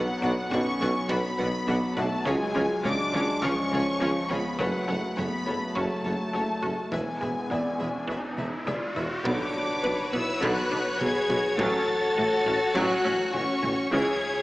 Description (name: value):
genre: cinematic, hybrid orchestral and electronic film score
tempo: 103 BPM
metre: 4/4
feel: straight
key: F# minor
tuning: A4 = 440 Hz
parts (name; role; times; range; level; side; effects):
- warm symphonic violin section; melody; 0.0-14.4 s; F#5 to A6; -32 LUFS; left 1 dB; none
- mellow French horn section; sustained chords; 0.0-14.4 s; F#3 to A4; -30 LUFS; left 1 dB; none
- warm trombone section; sustained chords; 0.0-14.1 s; E3 to C#4; -34 LUFS; right 1 dB; none
- resonant blip pluck; arpeggios; 0.0-14.1 s; C#3 to B4; -37 LUFS; equal; none
- punchy sub bass; bass; 0.0-14.4 s; E1 to C#2; -50 LUFS; equal; none
- warm tuba; bass; 0.0-14.0 s; E1 to C#2; -33 LUFS; right 1 dB; none
- felt-muted upright piano; texture; 0.0-11.6 s; B4 to E5; -38 LUFS; left 1 dB; tape echo
- rich symphonic violin section; second line; 0.2-14.4 s; F#4 to F#5; -33 LUFS; left 1 dB; none
- rich symphonic viola section; accompaniment; 0.2-14.4 s; D3 to G#4; -35 LUFS; equal; none
- rich studio double bass section; bass; 0.2-14.0 s; E1 to C#2; -41 LUFS; right 1 dB; none
- rich symphonic cello section; bass; 0.2-14.0 s; E2 to C#3; -34 LUFS; equal; none
- taiko ensemble; drums; 0.2-14.4 s; none; -45 LUFS; equal; none
- riser and impact; sound effects; 6.9-11.6 s; none; -38 LUFS; equal; none
room: wet scoring stage reverb, RT60 2.0 s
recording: small speaker sound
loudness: -24 LUFS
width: side -18 dB against mid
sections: 0.0-9.3 A section; 9.3-14.4 B section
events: riser 6.9-9.3; drum fill 8.4-9.3; impact 9.3-11.6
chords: 0.0 Bm; 2.3 C#; 4.6 F#m; 6.9 E; 9.3 Bmadd9; 11.6 F#m/A; 13.9 C#m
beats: 0.52 1.10 1.68 | 2.27 2.85 3.43 4.01 | 4.60 5.18 5.76 6.34 | 6.93 7.51 8.09 8.67 | 9.26 9.84 10.42 11.00 | 11.59 12.17 12.75 13.33 | 13.92